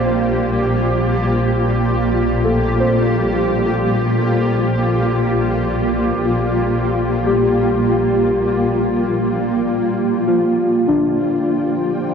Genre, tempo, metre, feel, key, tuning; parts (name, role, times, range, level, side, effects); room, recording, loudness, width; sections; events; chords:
ambient; 50 BPM; 4/4; straight; Bb major; A4 = 442 Hz
granular cloud pad; sustained chords; 0.0-12.1 s; Bb3 to G5; -17 LUFS; equal; built-in reverb
muted felt-like synth keys; arpeggios; 0.0-12.1 s; D4 to C5; -21 LUFS; left 1 dB; chorus, tape echo
bright studio double bass section; bass; 0.0-9.6 s; Bb1; -21 LUFS; equal
wet huge ambient reverb, RT60 7.3 s; worn, warbling old tape, cassette tape, warbly pitch drift; -15 LUFS; side -6 dB against mid
0.0-9.7 A section; 9.7-12.1 B section
0.0 Bb69